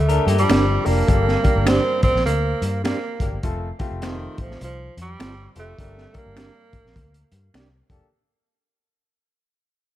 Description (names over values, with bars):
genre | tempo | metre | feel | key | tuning
uptempo 1960s-style soul | 102 BPM | 4/4 | swing 61% on 8ths | G minor | A4 = 436 Hz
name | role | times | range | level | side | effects
clear tenor saxophone | melody | 0.0-7.3 s | Eb3 to C4 | -24 LUFS | right 3 dB | tape echo
vintage muted fingered electric bass | bass | 0.0-8.0 s | F1 to G2 | -23 LUFS | left 1 dB | none
electric guitar through a small old amp | riff | 0.1-1.1 s | F3 to Bb4 | -24 LUFS | left 4 dB | none
crunchy breakbeat drum kit | drums | 0.1-8.0 s | hi-hat, kick drum, snare drum | -23 LUFS | left 1 dB | none
semi-hollow electric guitar | stabs | 0.5-7.7 s | C4 to D5 | -26 LUFS | right 6 dB | spring reverb
finger snaps | percussion | 0.5-7.7 s | none | -32 LUFS | left 2 dB | none
clear concert grand piano | accompaniment | 0.8-8.1 s | G2 to Bb4 | -29 LUFS | left 3 dB | none
room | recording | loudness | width
little or no reverb | none | -17 LUFS | side -13 dB against mid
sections
0.0-8.1 A section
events
fade-out 0.0-8.1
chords
0.0 Gm; 3.4 F; 5.8 Gm